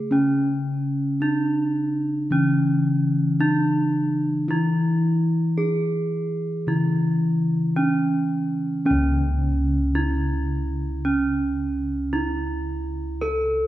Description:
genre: Javanese gamelan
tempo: 55 BPM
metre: 4/4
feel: straight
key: C# pelog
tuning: A4 = 440 Hz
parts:
  - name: gamelan-type bronze metallophone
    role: melody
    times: 0.0-13.7 s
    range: C#4 to A4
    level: -24 LUFS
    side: right 3 dB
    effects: none
  - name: gamelan-type bronze metallophone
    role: accompaniment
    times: 0.0-8.9 s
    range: C#3 to A3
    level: -24 LUFS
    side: left 2 dB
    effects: none
  - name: gamelan-type bossed gongs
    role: bass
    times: 0.0-13.7 s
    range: C#2 to A4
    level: -26 LUFS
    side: left 1 dB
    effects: none
room: wet recital hall reverb, RT60 1.8 s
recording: heard from further back in the room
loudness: -20 LUFS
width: side -14 dB against mid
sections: 0.0-8.9 A section; 8.9-13.7 A section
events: none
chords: none

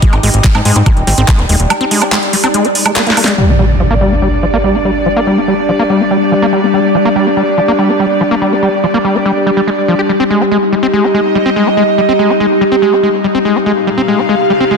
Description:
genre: psychedelic trance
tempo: 143 BPM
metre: 4/4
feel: straight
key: unclear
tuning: A4 = 440 Hz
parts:
  - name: overtone-sweeping drone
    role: sustained chords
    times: 0.0-14.8 s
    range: G3 to G4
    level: -15 LUFS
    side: left 2 dB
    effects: chorus, built-in reverb, sidechain pumping
  - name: overdriven acid bass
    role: riff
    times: 0.0-14.8 s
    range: F3 to G4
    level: -14 LUFS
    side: left 1 dB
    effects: distortion, auto-pan, sidechain pumping, ping-pong delay
  - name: electronic kick drum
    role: drums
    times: 0.0-1.4 s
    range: none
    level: -9 LUFS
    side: equal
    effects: studio reverb
  - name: garage drum kit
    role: drums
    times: 0.0-3.5 s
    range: crash cymbal, handclaps, hi-hat, snare drum, woodblock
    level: -14 LUFS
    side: right 2 dB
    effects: low-pass filter on hats, studio reverb, low-pass filter on perc, soft clipping on snare, low-pass filter on snare, low-pass filter on cymbals
  - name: airy breathy pad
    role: texture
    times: 0.0-14.8 s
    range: D4 to F5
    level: -15 LUFS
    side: right 2 dB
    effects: chorus, sidechain pumping
  - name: plucky analog bass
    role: bass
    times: 0.1-1.7 s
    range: Eb1 to Ab2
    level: -11 LUFS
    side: equal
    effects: none
  - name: resonant blip pluck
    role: second line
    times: 0.7-2.1 s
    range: C4 to D4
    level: -26 LUFS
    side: right 1 dB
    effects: none
  - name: impact and riser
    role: sound effects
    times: 3.4-5.1, 13.8-14.8 s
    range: none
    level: -15 LUFS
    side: equal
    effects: none
room: moderate lush hall reverb, RT60 1.9 s, digital ambience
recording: dense, heavily limited modern master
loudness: -9 LUFS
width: side -5 dB against mid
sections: 0.0-3.4 A section; 3.4-14.8 B section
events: kick drops out 1.7-3.4; drum fill 3.0-3.4; impact 3.4-5.1; filter sweep on acid bass 3.4-14.8; filter sweep on synth drone 3.4-14.8; riser 13.8-14.8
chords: 0.0 Ab5; 3.4 G5; 10.1 Ab5

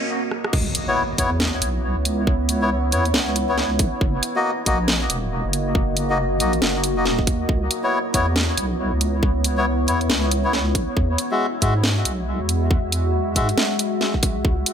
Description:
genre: deep dubstep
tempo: 138 BPM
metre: 4/4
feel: swing 60% on 16ths, half-time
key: C# dorian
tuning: A4 = 440 Hz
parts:
  - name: deep dark ambient pad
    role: sustained chords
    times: 0.0-14.7 s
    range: G#3 to E5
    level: -25 LUFS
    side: equal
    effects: chorus, built-in reverb
  - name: riser and impact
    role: sound effects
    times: 0.0-2.3 s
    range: none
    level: -30 LUFS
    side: right 1 dB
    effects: none
  - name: garage drum kit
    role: drums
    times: 0.3-14.7 s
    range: crash cymbal, hi-hat, rim click, snare drum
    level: -22 LUFS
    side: equal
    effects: none
  - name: deep soft wobble bass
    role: bass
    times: 0.5-14.7 s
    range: D#1 to G#2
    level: -23 LUFS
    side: equal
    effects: chorus
  - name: electronic kick drum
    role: drums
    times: 0.5-14.6 s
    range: none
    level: -21 LUFS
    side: equal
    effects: high-pass filter on kick, high-pass filter on room
  - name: melodica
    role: stabs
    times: 0.9-13.5 s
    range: G#3 to E5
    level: -25 LUFS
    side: left 2 dB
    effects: dub echo
room: light reverb, digital ambience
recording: none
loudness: -18 LUFS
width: side -8 dB against mid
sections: 0.5-14.7 A section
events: drum fill 0.3; drop 0.5-14.7; impact 0.5-2.3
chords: 0.0 N.C.; 0.5 C#m7; 4.0 F#6; 7.5 C#m7; 11.0 Eadd9

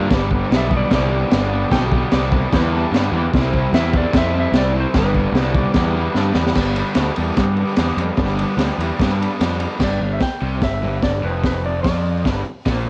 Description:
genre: garage rock duo or trio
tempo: 149 BPM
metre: 4/4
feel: straight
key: G mixolydian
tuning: A4 = 440 Hz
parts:
  - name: combo organ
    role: sustained chords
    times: 0.0-9.8 s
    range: D4 to A5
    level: -32 LUFS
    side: equal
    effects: cassette tape
  - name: raw garage guitar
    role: riff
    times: 0.0-12.9 s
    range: F2 to E4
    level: -26 LUFS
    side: equal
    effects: overdrive, cassette tape
  - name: fuzz picked electric bass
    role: bass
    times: 0.0-12.9 s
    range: F1 to G2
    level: -23 LUFS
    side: equal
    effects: overdrive
  - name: crunchy breakbeat drum kit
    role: drums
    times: 0.1-12.8 s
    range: crash cymbal, hi-hat, kick drum, ride cymbal, snare drum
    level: -22 LUFS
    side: equal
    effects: cassette tape
  - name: clean lap steel guitar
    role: melody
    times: 0.6-6.1, 9.8-12.4 s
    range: B4 to G5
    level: -27 LUFS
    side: equal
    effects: cassette tape
room: small room reverb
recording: home recording on cassette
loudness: -18 LUFS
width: mono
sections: 0.0-6.6 A section; 6.6-9.8 B section; 9.8-12.9 C section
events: transistor combo organ fill 2.5-3.3; drum fill 6.2-6.6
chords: 0.1 G; 3.3 C; 4.9 G; 9.8 G5

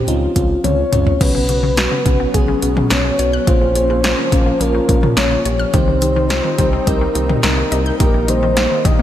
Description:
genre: synth-pop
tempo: 106 BPM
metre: 4/4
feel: straight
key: unclear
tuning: A4 = 442 Hz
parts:
  - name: soft octave-layered synth lead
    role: melody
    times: 0.0-9.0 s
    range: F4 to Eb5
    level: -19 LUFS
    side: left 1 dB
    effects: chorus, tremolo, digital delay
  - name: mellow FM electric piano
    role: accompaniment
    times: 0.0-9.0 s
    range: Bb3 to Bb4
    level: -22 LUFS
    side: right 2 dB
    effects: chorus
  - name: round analog bass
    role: bass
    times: 0.1-9.0 s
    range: Bb1 to Db2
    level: -20 LUFS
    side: equal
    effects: none
  - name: deep house drum kit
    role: drums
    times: 0.1-9.0 s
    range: crash cymbal, hi-hat, kick drum, snare drum, toms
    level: -17 LUFS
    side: equal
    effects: none
  - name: warm analog pad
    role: sustained chords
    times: 1.2-9.0 s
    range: F3 to Eb4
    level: -24 LUFS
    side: left 2 dB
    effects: chorus
  - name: wide unison pluck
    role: arpeggios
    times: 1.2-9.0 s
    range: C#3 to G6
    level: -24 LUFS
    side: left 4 dB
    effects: digital delay
room: moderate lush hall reverb, RT60 2.1 s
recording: bright 1980s-style digital production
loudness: -13 LUFS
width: side -11 dB against mid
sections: 0.0-1.2 A section; 1.2-9.0 B section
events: drum fill 0.6-1.2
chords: 0.0 Dbmaj7; 1.2 Bsus2; 3.5 Bbm; 5.7 Cm; 8.0 Eb/Bb

